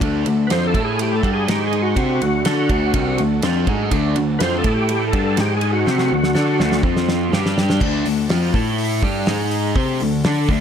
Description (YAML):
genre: classic rock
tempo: 123 BPM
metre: 4/4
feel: straight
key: D mixolydian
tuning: A4 = 439 Hz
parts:
  - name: picked steel-string acoustic guitar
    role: accompaniment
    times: 0.0-7.8 s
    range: G#2 to D5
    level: -30 LUFS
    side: right 5 dB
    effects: none
  - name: string machine, violins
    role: sustained chords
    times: 0.0-10.6 s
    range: F#3 to D5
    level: -32 LUFS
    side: right 1 dB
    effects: none
  - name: crunchy overdriven guitar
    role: riff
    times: 0.0-10.6 s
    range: C3 to D5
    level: -23 LUFS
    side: left 13 dB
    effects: none
  - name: crunchy overdriven guitar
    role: riff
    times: 0.0-10.6 s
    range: C3 to D5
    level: -25 LUFS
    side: right 12 dB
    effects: phaser
  - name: fuzz picked electric bass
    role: bass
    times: 0.0-10.6 s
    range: C2 to D3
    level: -22 LUFS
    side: equal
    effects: overdrive
  - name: damped 70s drum kit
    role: drums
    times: 0.0-10.6 s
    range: crash cymbal, hi-hat, kick drum, ride cymbal, snare drum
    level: -23 LUFS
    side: right 1 dB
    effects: none
  - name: overdriven tonewheel organ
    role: melody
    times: 0.5-6.8 s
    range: F#4 to C5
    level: -23 LUFS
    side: right 2 dB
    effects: slow rotary speaker, chorus vibrato, analog delay
room: light reverb, small room ambience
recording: none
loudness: -16 LUFS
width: side -8 dB against mid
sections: 0.0-7.8 A section; 7.8-10.6 B section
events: tonewheel organ solo 0.0-7.8; drum fill 5.9-7.8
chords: 0.0 D; 0.7 A5; 1.2 D; 1.5 G#5; 2.0 D; 4.7 A5; 5.1 D; 5.4 G#5; 5.9 D; 6.8 F5; 7.3 G5; 7.8 D; 8.5 A5; 9.0 G5; 9.3 G#5; 9.8 D